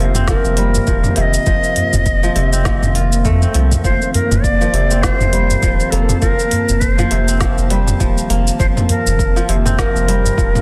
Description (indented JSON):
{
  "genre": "organic downtempo",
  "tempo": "101 BPM",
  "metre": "4/4",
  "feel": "swing 58% on 16ths",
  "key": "F mixolydian",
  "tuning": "A4 = 440 Hz",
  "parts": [
    { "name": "ethereal airy pad", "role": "sustained chords", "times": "0.1-10.6 s", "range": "Eb3 to A5", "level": "-27 LUFS", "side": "equal", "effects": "ensemble chorus, built-in reverb, phaser, sidechain pumping" },
    { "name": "kora", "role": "arpeggios", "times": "0.0-10.6 s", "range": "C3 to F4", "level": "-24 LUFS", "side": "equal", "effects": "tape echo" },
    { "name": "round analog bass", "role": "bass", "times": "0.0-10.6 s", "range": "Eb1 to F2", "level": "-19 LUFS", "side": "equal", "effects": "sidechain pumping" },
    { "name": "wind-like tuned noise texture", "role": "texture", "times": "0.0-10.6 s", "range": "Bb3", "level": "-32 LUFS", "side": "equal", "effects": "none" },
    { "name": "organic electronic drum kit", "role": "drums", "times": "0.1-10.6 s", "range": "hi-hat, shaker, snare drum, toms", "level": "-23 LUFS", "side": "equal", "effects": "soft clipping on snare" },
    { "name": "bright reedy Native American-style cedar flute", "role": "melody", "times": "0.3-10.6 s", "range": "A4 to F5", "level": "-23 LUFS", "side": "equal", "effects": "digital delay" },
    { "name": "electronic kick drum", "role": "drums", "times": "0.3-10.5 s", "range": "none", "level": "-20 LUFS", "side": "equal", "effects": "none" },
    { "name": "udu", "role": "percussion", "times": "0.8-10.4 s", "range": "none", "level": "-23 LUFS", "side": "equal", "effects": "none" }
  ],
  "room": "light reverb",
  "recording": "dense, heavily limited modern master",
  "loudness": "-15 LUFS",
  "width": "mono",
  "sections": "0.0-10.6 A section",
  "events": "none",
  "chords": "0.0 F7sus4",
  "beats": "0.28 0.87 | 1.47 2.06 2.66 3.25 | 3.84 4.44 5.03 5.63 | 6.22 6.82 7.41 8.00 | 8.60 9.19 9.79 10.38"
}